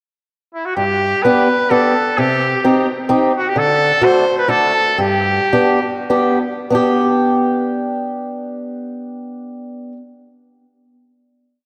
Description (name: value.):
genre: alpine folk, alpine dance band.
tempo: 92-132 BPM.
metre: 3/4.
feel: rubato.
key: G major.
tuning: A4 = 439 Hz.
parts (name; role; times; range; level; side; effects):
clear trumpet; melody; 0.5-6.1 s; E4 to C5; -19 LUFS; equal; tape echo.
fingerpicked swing-style acoustic guitar; accompaniment; 0.8-10.0 s; G2 to G4; -18 LUFS; equal; subtle chorus.
room: wet plate reverb, RT60 2.8 s.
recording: dreamy mix soaked in reverb.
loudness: -15 LUFS.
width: mono.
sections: 0.0-0.8 pickup bar; 0.8-6.7 A section; 6.7-10.5 final chord.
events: slowing down 3.6-6.7.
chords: 0.0 N.C.; 0.8 G; 2.2 Cm; 3.6 D; 5.0 G.